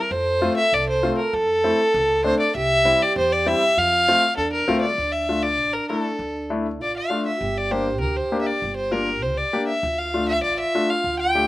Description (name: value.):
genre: klezmer.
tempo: 99 BPM.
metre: 2/4.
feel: straight.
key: F major, D minor from 5.0 s.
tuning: A4 = 441 Hz.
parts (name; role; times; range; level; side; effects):
rich violin; melody; 0.0-11.5 s; A4 to G5; -20 LUFS; equal; none.
trombone with bucket mute; second line; 0.1-11.5 s; C4 to A4; -27 LUFS; right 3 dB; none.
upright bass; bass; 0.1-11.5 s; G1 to F2; -31 LUFS; equal; none.
clear upright piano; accompaniment; 0.4-11.5 s; G3 to G4; -24 LUFS; left 2 dB; slapback echo.
room: light reverb.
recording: recorded outdoors, with no room sound.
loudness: -19 LUFS.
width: side -16 dB against mid.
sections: 0.0-5.0 A section; 5.0-11.5 B section.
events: none.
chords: 0.1 F; 2.5 C; 3.8 F; 5.0 Dm; 7.4 Gm; 9.8 Dm.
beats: | 0.10 0.71 | 1.32 1.94 | 2.54 3.15 | 3.76 4.37 | 4.98 5.59 | 6.20 6.81 | 7.42 8.02 | 8.63 9.23 | 9.84 10.45 | 11.05.